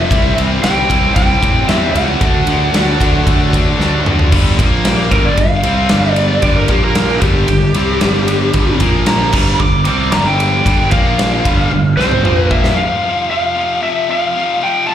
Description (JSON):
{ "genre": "hard rock", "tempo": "114 BPM", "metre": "4/4", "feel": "straight", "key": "unclear", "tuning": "A4 = 440 Hz", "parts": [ { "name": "lead guitar through a small cranked amp", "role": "melody", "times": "0.0-14.9 s", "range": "G4 to D6", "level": "-17 LUFS", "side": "equal", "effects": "overdrive, slapback echo, digital delay" }, { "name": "distorted electric guitar", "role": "riff", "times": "0.0-12.8 s", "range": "G2 to D4", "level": "-22 LUFS", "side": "right 10 dB", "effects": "overdrive, slapback echo" }, { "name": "high-gain distorted guitar", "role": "riff", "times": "0.0-14.9 s", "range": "F2 to D4", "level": "-20 LUFS", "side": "left 9 dB", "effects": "distortion, slapback echo" }, { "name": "high-gain distorted guitar", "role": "riff", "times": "0.0-12.8 s", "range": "G2 to F#4", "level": "-20 LUFS", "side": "equal", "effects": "distortion, slapback echo" }, { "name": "fuzz fingered electric bass", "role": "bass", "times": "0.0-12.7 s", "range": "G1 to A2", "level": "-17 LUFS", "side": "equal", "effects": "overdrive" }, { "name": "big rock drum kit", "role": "drums", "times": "0.1-12.8 s", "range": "crash cymbal, kick drum, ride cymbal, snare drum, toms", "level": "-16 LUFS", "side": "equal", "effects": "none" } ], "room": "studio ambience", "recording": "live gig heard through the venue's PA, club reverb", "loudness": "-11 LUFS", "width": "side -10 dB against mid", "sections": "0.0-4.3 A section; 4.3-12.8 B section; 12.8-14.9 A section", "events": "drum fill 3.8-4.3, 11.7-12.8; lead electric guitar solo 4.3-12.8", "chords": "0.1 C; 2.2 D; 4.3 G5; 4.6 Bb5; 5.1 G5; 6.7 Bb5; 7.2 G5; 8.8 Bb5; 9.3 G5; 10.9 Bb5; 11.4 G5; 12.2 Bb5; 12.8 F5", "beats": "| 0.10 0.63 1.16 1.69 | 2.21 2.74 3.27 3.79 | 4.32 4.85 5.37 5.90 | 6.43 6.96 7.48 8.01 | 8.54 9.07 9.60 10.12 | 10.65 11.18 11.71 12.24 | 12.77 13.30 13.82 14.35 | 14.88" }